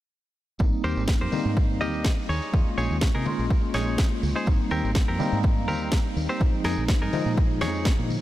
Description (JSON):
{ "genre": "filtered disco house", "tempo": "124 BPM", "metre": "4/4", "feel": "swing 53% on 16ths", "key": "Ab major", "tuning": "A4 = 440 Hz", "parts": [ { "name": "tine electric piano", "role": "accompaniment", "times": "0.6-8.2 s", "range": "F3 to F4", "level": "-29 LUFS", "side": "equal", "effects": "medium stereo tremolo, phaser, vintage 12-bit sampler grit, sidechain pumping, low-pass filter" }, { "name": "fingered electric bass", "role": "bass", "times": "0.6-8.2 s", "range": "Ab1 to C3", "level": "-29 LUFS", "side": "equal", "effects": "sidechain pumping, low-pass filter" }, { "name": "electronic kick drum", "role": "drums", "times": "0.6-8.0 s", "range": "none", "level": "-23 LUFS", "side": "equal", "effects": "none" }, { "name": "tambourine and congas", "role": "percussion", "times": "0.6-8.2 s", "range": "none", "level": "-38 LUFS", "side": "left 2 dB", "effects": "sidechain pumping on perc, low-pass filter on perc" }, { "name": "direct-recorded clean electric guitar", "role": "riff", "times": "0.8-7.9 s", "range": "C4 to Eb5", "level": "-31 LUFS", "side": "equal", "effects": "sidechain pumping, low-pass filter" }, { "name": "electronic snare drum", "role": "drums", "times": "1.1-8.0 s", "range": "none", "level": "-34 LUFS", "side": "equal", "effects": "none" } ], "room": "light reverb", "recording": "none", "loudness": "-22 LUFS", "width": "side -14 dB against mid", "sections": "0.6-8.2 A section", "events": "none", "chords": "0.6 Abmaj9; 2.3 Eb7sus4; 4.5 Abmaj9; 6.4 Bb7sus4", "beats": "| 0.60 1.08 1.57 2.05 | 2.54 3.02 3.50 3.99 | 4.47 4.96 5.44 5.92 | 6.41 6.89 7.38 7.86" }